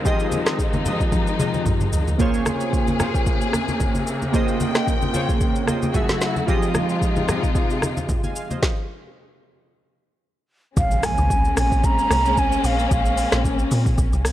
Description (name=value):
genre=amapiano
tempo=112 BPM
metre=4/4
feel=swing 55% on 16ths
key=unclear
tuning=A4 = 439 Hz
part: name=glassy digital keys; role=accompaniment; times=0.0-8.8 s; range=F3 to Ab5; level=-24 LUFS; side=right 2 dB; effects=chorus
part: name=warm symphonic string section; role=sustained chords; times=0.0-14.3 s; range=C3 to G5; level=-25 LUFS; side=left 2 dB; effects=none
part: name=afro-pop drum kit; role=drums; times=0.1-14.3 s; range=hi-hat, kick drum, rim click, shaker, snare drum, toms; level=-22 LUFS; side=equal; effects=none
part: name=congas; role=percussion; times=0.3-8.6 s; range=none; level=-28 LUFS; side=left 1 dB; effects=none
part: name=mellow hollow silver concert flute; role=melody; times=10.8-13.4 s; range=F5 to Bb5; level=-23 LUFS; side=right 2 dB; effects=analog delay
part: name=deep log drum bass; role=bass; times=10.8-14.3 s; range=Bb1 to Bb2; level=-22 LUFS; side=equal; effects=none
part: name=impact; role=sound effects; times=10.8-12.9 s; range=none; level=-29 LUFS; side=equal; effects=none
room=light reverb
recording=dry, gritty hardware recording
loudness=-18 LUFS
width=side -13 dB against mid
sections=0.0-10.8 A section; 10.8-14.3 B section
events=drum fill 1.1-2.2; stop 8.6-10.8; drop 10.8-14.3; impact 10.8-12.9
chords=0.0 Fm7; 2.2 Bbm9; 5.9 Gbm7; 6.5 Fm7; 10.8 Bbm9